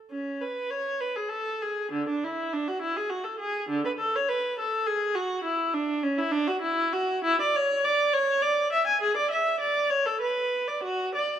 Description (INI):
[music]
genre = classical, baroque-style suite movement for unaccompanied viola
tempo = 67 BPM (dotted quarters)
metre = 6/8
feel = uneven beats, rubato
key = unclear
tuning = A4 = 440 Hz
[part]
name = rich viola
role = solo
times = 0.1-11.4 s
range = D3 to G#5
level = -25 LUFS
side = equal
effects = none
[sound]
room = moderate recital hall reverb, RT60 1.6 s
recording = close, detailed microphones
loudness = -24 LUFS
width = side -9 dB against mid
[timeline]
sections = 0.1-11.4 A section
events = none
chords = none